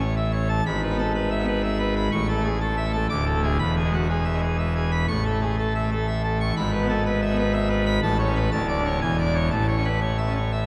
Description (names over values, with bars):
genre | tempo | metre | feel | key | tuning
classical, organ toccata | 122 BPM | 3/4 | straight | A major | A4 = 436 Hz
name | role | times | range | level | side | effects
pipe organ, full organ | solo | 0.0-10.7 s | D1 to D6 | -24 LUFS | equal | none
room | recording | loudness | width
wet church reverb, RT60 3.5 s | vinyl crackle | -24 LUFS | mono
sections
0.0-10.7 A section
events
none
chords
0.0 A; 0.7 E/G#; 2.1 A; 3.1 D5; 3.6 E; 5.1 A; 6.6 E/G#; 8.0 A; 8.5 D5; 9.0 E7; 9.5 A